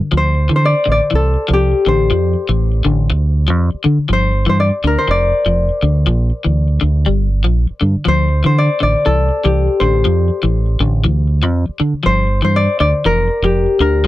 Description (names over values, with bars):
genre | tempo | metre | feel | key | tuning
afrobeat | 121 BPM | 4/4 | straight | D minor | A4 = 441 Hz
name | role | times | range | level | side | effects
Celtic harp | melody | 0.0-14.1 s | G4 to D5 | -17 LUFS | left 2 dB | none
electric guitar at the edge of break-up | arpeggios | 0.0-14.1 s | D3 to G3 | -19 LUFS | left 4 dB | lush chorus
deep dub fingered electric bass | bass | 0.0-14.1 s | F1 to D3 | -14 LUFS | right 1 dB | none
room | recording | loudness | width
little or no reverb | dry, close 1970s-style studio recording | -12 LUFS | side -15 dB against mid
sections
0.0-14.1 A section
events
none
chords
0.1 Dm9; 4.1 Gm7; 8.1 Dm9; 12.1 Gm7